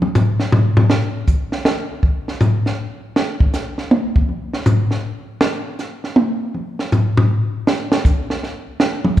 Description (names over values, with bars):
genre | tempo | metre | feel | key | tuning
jazz | 160 BPM | 3/4 | swing 65% on 8ths | none | none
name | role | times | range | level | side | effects
compact cocktail drum kit | drums | 0.0-9.2 s | hi-hat, kick drum, snare drum, toms | -15 LUFS | equal | none
room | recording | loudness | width
wet recital hall reverb, RT60 1.6 s | recorded in a church or concert hall | -16 LUFS | side -13 dB against mid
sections
0.9-9.2 A section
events
drum solo 0.9-9.2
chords
none